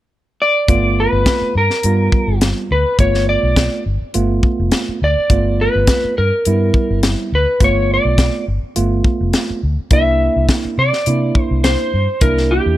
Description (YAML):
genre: straight-eighth soul blues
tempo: 104 BPM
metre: 4/4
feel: straight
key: G mixolydian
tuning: A4 = 440 Hz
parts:
  - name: electric slide guitar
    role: melody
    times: 0.4-12.8 s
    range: G4 to E5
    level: -17 LUFS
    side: equal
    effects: none
  - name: tine electric piano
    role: accompaniment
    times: 0.7-12.8 s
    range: G3 to F4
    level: -20 LUFS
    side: right 4 dB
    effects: none
  - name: vintage muted fingered electric bass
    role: bass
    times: 0.7-12.8 s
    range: F1 to C3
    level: -17 LUFS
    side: equal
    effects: none
  - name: tight funk drum kit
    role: drums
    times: 0.7-12.4 s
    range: hi-hat, kick drum, snare drum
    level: -16 LUFS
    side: left 1 dB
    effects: none
room: little or no reverb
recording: none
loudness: -13 LUFS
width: side -14 dB against mid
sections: 0.7-12.8 A section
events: none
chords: 0.0 N.C.; 0.7 G9; 9.9 C9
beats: 0.10 | 0.68 1.26 1.84 2.41 | 2.99 3.57 4.14 4.72 | 5.30 5.87 6.45 7.03 | 7.60 8.18 8.76 9.33 | 9.91 10.49 11.06 11.64 | 12.22